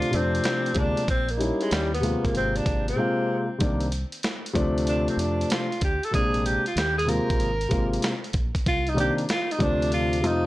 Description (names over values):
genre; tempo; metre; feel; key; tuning
hip hop, jazz-hop; 95 BPM; 4/4; swing 66% on 16ths; unclear; A4 = 440 Hz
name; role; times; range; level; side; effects
breathy tenor saxophone; melody; 0.0-10.5 s; G3 to Bb4; -27 LUFS; right 1 dB; tape echo, plate reverb
dark baby grand piano; accompaniment; 0.0-10.5 s; C3 to F4; -26 LUFS; left 1 dB; none
dusty soul sampler-style drum kit; drums; 0.0-10.4 s; hi-hat, kick drum, snare drum; -28 LUFS; equal; vintage 12-bit sampler grit
deep dub fingered electric bass; bass; 0.1-10.5 s; Ab1 to F2; -29 LUFS; equal; none
room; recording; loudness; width
light reverb; dry, gritty hardware recording; -22 LUFS; side -17 dB against mid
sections
0.0-10.5 A section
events
tenor saxophone solo 0.0-10.5; drums muted 3.0-3.6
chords
0.0 Dm7; 1.1 Eb13b9/Bb; 1.7 Eb7b9; 2.3 Ab69; 3.6 Cm9; 4.6 Dm7; 6.1 Bb9; 6.8 Eb5; 7.4 Ab69; 8.7 Cm9; 9.6 Dm7